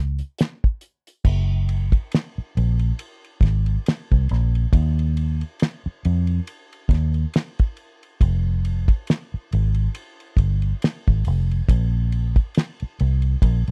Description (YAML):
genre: R&B, neo-soul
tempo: 69 BPM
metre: 4/4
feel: swing 56% on 16ths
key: unclear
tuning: A4 = 440 Hz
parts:
  - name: vintage muted fingered electric bass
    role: bass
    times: 0.0-13.7 s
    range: F1 to F2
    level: -22 LUFS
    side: equal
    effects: none
  - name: cloth-damped thuddy drum kit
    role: drums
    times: 0.2-13.7 s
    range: crash cymbal, hi-hat, kick drum, ride cymbal, snare drum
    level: -20 LUFS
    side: equal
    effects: none
room: little or no reverb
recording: dry, close 1970s-style studio recording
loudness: -22 LUFS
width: mono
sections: 0.0-1.2 A section; 1.2-13.7 B section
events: none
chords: none